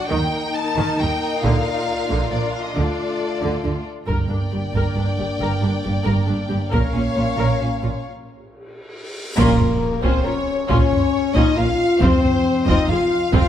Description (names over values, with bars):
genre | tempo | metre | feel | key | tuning
cinematic, epic orchestral film score | 136 BPM | 3/4 | straight | G minor, Bb minor from 9.4 s | A4 = 441 Hz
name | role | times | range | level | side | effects
warm symphonic violin section | melody | 0.0-13.5 s | Bb4 to A5 | -28 LUFS | left 3 dB | none
warm symphonic violin section | second line | 0.0-13.5 s | Eb4 to F5 | -28 LUFS | left 2 dB | none
warm symphonic viola section | accompaniment | 0.0-13.5 s | D3 to Bb4 | -27 LUFS | right 1 dB | none
mellow French horn section | sustained chords | 0.0-13.5 s | A3 to D5 | -23 LUFS | left 4 dB | none
dark symphonic double bass section | bass | 0.1-13.4 s | F1 to Eb2 | -24 LUFS | right 3 dB | none
warm symphonic cello section | bass | 0.1-13.4 s | F2 to Eb3 | -24 LUFS | right 2 dB | none
taiko ensemble | drums | 1.4-13.5 s | none | -23 LUFS | equal | none
timpani | percussion | 4.1-4.7, 9.4-10.0, 12.0-12.6 s | F2 to Bb2 | -30 LUFS | right 1 dB | none
cymbal swell and impact | sound effects | 8.6-10.7 s | none | -34 LUFS | equal | none
room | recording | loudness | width
light reverb | close, detailed microphones | -17 LUFS | side -10 dB against mid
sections
0.0-4.1 A section; 4.1-9.4 B section; 9.4-13.5 C section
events
break 8.1-9.4; cymbal swell 8.6-9.4; band accent 9.4-9.8; impact 9.4-10.7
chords
0.1 Eb; 1.4 Bb; 2.8 Dm; 4.1 Gm; 6.7 Bbm; 12.0 F5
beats
| 0.11 0.56 1.00 | 1.44 1.88 2.32 | 2.76 3.21 3.65 | 4.09 4.53 4.97 | 5.41 5.85 6.29 | 6.74 7.18 7.62 | 8.06 8.50 8.94 | 9.38 9.82 10.26 | 10.70 11.14 11.58 | 12.02 12.46 12.90 | 13.34